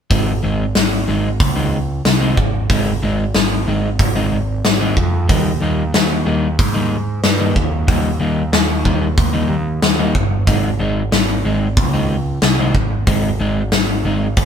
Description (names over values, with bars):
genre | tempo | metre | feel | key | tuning
quiet-loud alternative rock | 92 BPM | 4/4 | straight | Ab major | A4 = 440 Hz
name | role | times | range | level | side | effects
electric guitar at the edge of break-up | arpeggios | 0.1-14.3 s | Eb3 to Eb4 | -20 LUFS | left 1 dB | none
growling picked electric bass | bass | 0.1-14.4 s | G1 to Ab2 | -19 LUFS | right 1 dB | overdrive
big rock drum kit | drums | 0.1-14.4 s | hi-hat, kick drum, snare drum | -17 LUFS | left 1 dB | none
room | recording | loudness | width
light reverb | band playing live in one room | -14 LUFS | side -8 dB against mid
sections
0.1-14.4 A section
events
none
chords
0.1 Ab; 5.3 Eb; 10.5 Ab